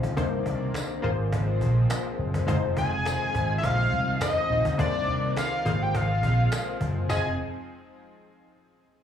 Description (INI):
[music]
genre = early-eighties boogie funk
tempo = 104 BPM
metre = 4/4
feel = straight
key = F dorian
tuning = A4 = 442 Hz
[part]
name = funky polysynth comp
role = accompaniment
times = 0.0-7.4 s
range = Ab3 to Eb5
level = -32 LUFS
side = left 4 dB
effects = chorus, slapback echo
[part]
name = lush unison pad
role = sustained chords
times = 0.0-7.4 s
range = C3 to D5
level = -36 LUFS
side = equal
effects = chorus
[part]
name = slap bass with an envelope filter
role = bass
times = 0.0-7.4 s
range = F1 to F2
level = -26 LUFS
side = equal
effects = none
[part]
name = cajon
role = drums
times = 0.0-7.2 s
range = none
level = -32 LUFS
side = equal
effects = slapback echo
[part]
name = tambourine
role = percussion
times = 0.8-7.4 s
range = none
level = -41 LUFS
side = right 3 dB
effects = none
[part]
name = fat analog lead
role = melody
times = 2.8-7.4 s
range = D5 to Ab5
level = -27 LUFS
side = left 1 dB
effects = slapback echo
[sound]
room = light reverb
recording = live gig heard through the venue's PA, club reverb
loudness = -23 LUFS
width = side -9 dB against mid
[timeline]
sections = 0.0-2.5 A section; 2.5-7.1 B section; 7.1-9.0 C section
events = none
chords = 0.2 Cm9; 1.0 Ab69; 2.5 Fm7; 4.8 Cm9; 5.7 Ab69; 7.1 Fm7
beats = | 0.17 0.75 1.32 1.90 | 2.48 3.06 3.63 4.21 | 4.79 5.36 5.94 6.52 | 7.09